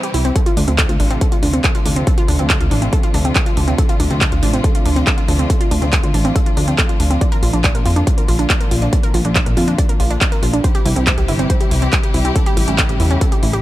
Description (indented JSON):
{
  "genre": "uplifting trance",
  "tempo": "140 BPM",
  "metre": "4/4",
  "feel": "straight",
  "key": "D minor",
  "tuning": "A4 = 437 Hz",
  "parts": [
    { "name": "rich studio string section", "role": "sustained chords", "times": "0.0-13.6 s", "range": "Bb2 to G4", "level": "-24 LUFS", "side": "left 2 dB", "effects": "sidechain pumping" },
    { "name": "wide unison pluck", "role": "arpeggios", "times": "0.0-13.6 s", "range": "C4 to D5", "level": "-22 LUFS", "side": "right 2 dB", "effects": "sidechain pumping, dub echo" },
    { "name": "big-room dance drum kit", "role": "drums", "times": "0.0-13.6 s", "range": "handclaps, hi-hat", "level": "-22 LUFS", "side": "equal", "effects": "none" },
    { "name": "plucky analog bass", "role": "bass", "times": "0.1-13.6 s", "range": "G1 to F2", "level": "-17 LUFS", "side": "equal", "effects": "sidechain pumping" },
    { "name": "electronic kick drum", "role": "drums", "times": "0.4-13.3 s", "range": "none", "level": "-16 LUFS", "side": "equal", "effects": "none" }
  ],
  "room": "little or no reverb",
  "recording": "none",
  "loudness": "-13 LUFS",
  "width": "side -15 dB against mid",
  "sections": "0.0-13.6 A section",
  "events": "break 0.0-0.4",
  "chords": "0.4 Dm7; 7.2 Bb; 10.6 C; 12.4 A7"
}